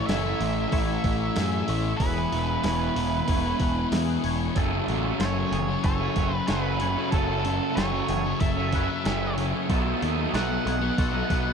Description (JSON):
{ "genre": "rock, shoegaze and dream pop", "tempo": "94 BPM", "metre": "4/4", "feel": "straight", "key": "unclear", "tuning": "A4 = 439 Hz", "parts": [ { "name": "octave-fuzz lead guitar", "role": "melody", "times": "0.0-11.5 s", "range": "A4 to F#5", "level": "-31 LUFS", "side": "right 1 dB", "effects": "distortion, diffuse ambient delay" }, { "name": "twangy electric guitar", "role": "arpeggios", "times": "0.0-11.5 s", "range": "F#4 to C#5", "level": "-37 LUFS", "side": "left 7 dB", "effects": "ensemble chorus, diffuse ambient delay" }, { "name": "raw garage guitar", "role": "riff", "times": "0.0-11.5 s", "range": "F#2 to E4", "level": "-30 LUFS", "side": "right 12 dB", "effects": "overdrive, reverse reverb" }, { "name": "thick fuzz guitar", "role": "riff", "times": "0.0-11.5 s", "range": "E2 to B3", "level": "-29 LUFS", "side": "left 11 dB", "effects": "distortion, analog chorus" }, { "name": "growling picked electric bass", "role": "bass", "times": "0.1-11.5 s", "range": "E1 to F#2", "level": "-29 LUFS", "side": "right 1 dB", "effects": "overdrive" }, { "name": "crisp 8-bit digital drum machine", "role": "drums", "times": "0.1-11.5 s", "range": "hi-hat, kick drum, snare drum", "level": "-29 LUFS", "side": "right 1 dB", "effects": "none" } ], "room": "moderate plate reverb, RT60 3.2 s", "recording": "dreamy mix soaked in reverb", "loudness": "-23 LUFS", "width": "side -6 dB against mid", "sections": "0.0-4.6 A section; 4.6-11.5 B section", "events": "none", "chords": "0.0 A; 2.0 E6; 4.6 F#m; 9.7 B7" }